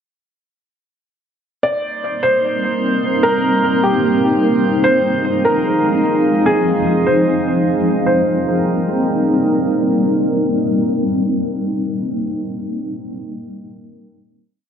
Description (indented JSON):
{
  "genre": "hip hop, atmospheric cloud-rap",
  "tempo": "149 BPM",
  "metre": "4/4",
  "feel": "half-time",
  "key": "C minor",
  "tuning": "A4 = 440 Hz",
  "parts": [
    { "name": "felt-muted upright piano", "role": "melody", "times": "1.6-9.2 s", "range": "G4 to D5", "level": "-18 LUFS", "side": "equal", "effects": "low-pass filter, dub echo" },
    { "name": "granular cloud pad", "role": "sustained chords", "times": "2.3-12.0 s", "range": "F3 to Bb4", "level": "-16 LUFS", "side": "equal", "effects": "built-in reverb" },
    { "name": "drifting glass-harmonics texture", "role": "texture", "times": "1.9-12.0 s", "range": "Ab3 to Eb5", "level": "-24 LUFS", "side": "right 5 dB", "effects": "chorus, built-in reverb" }
  ],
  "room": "wet spring reverb, RT60 1.3 s, small room ambience",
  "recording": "echo-heavy mix, low-pass filter",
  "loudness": "-14 LUFS",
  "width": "side -8 dB against mid",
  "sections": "1.6-8.1 breakdown; 8.1-11.3 final chord",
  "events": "filter sweep 1.6-8.1",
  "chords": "1.6 Cm7; 4.8 Fm7; 8.1 Cm7",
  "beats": "| 1.62 2.02 2.43 2.83 | 3.23 3.63 4.04 4.44 | 4.84 5.25 5.65 6.05 | 6.45 6.86 7.26 7.66 | 8.06 8.47 8.87 9.27 | 9.68 10.08 10.48 10.88"
}